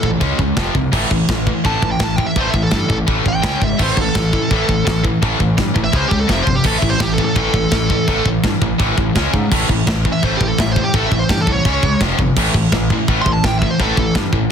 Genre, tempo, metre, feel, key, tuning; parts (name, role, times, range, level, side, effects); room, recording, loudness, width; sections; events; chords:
heavy metal; 168 BPM; 4/4; straight; A4 = 440 Hz
dark smooth lead guitar; melody; 0.0-14.2 s; G4 to C6; -21 LUFS; right 2 dB; overdrive, digital delay
tight distorted guitar; riff; 0.0-14.5 s; F2 to C#4; -18 LUFS; left 1 dB; distortion
fuzz picked electric bass; bass; 0.0-14.4 s; F1 to G#2; -21 LUFS; equal; overdrive
tight metal drum kit; drums; 0.0-14.4 s; china cymbal, crash cymbal, kick drum, snare drum; -19 LUFS; equal
small room ambience; dense, heavily limited modern master; -14 LUFS; side -7 dB against mid
0.0-14.5 A section
lead electric guitar solo 0.0-14.5
0.2 C#5; 0.6 F5; 0.9 A5; 3.4 C#5; 3.8 A5; 5.9 C#5; 6.3 F5; 6.7 A5; 9.2 C#5; 9.5 A5; 11.7 C#5; 12.0 F5; 12.4 A5